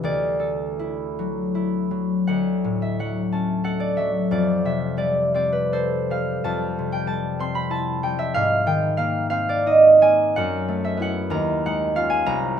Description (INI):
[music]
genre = classical, solo harp piece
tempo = 52-66 BPM (dotted quarters)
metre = 6/8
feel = rubato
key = unclear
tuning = A4 = 439 Hz
[part]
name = concert harp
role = solo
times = 0.0-12.6 s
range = C2 to C6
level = -19 LUFS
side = equal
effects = none
[sound]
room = light reverb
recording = minimal, uncompressed stereo recording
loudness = -19 LUFS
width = side -8 dB against mid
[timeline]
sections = 0.0-2.3 A section; 2.3-12.6 B section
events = none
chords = 0.0 Dadd9; 2.3 Dmaj9; 4.3 F69; 6.4 Fmaj9; 8.4 G#69; 10.4 F#m11; 11.3 D#m11